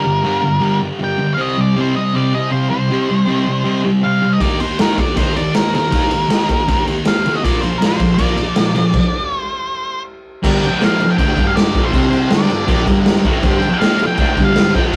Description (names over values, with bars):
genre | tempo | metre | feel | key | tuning
garage rock duo or trio | 159 BPM | 4/4 | straight | G minor | A4 = 440 Hz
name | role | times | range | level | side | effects
octave-fuzz lead guitar | melody | 0.0-14.8 s | Bb4 to G5 | -23 LUFS | equal | distortion
combo organ | sustained chords | 0.0-14.8 s | C4 to F5 | -29 LUFS | equal | none
thick fuzz guitar | riff | 0.0-14.9 s | G2 to Eb4 | -19 LUFS | equal | distortion
raw garage drum kit | drums | 4.4-15.0 s | crash cymbal, kick drum, ride cymbal, snare drum | -19 LUFS | equal | none
room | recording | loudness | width
moderate studio reverb, RT60 0.7 s | rough rehearsal-room recording, warm saturation | -16 LUFS | mono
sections
0.0-10.4 A section; 10.4-15.0 B section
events
stop 8.9-10.4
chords
0.0 Gm; 1.4 Cm; 4.4 Eb; 7.4 Bb; 10.4 Gm; 11.9 C5; 12.3 Gm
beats
0.25 0.63 1.01 | 1.39 1.76 2.14 2.52 | 2.90 3.28 3.66 4.04 | 4.42 4.79 5.17 5.55 | 5.93 6.31 6.68 7.06 | 7.44 7.81 8.19 8.57 | 8.94 9.32 9.70 10.07 | 10.45 10.82 11.20 11.57 | 11.95 12.32 12.70 13.07 | 13.45 13.82 14.20 14.57 | 14.95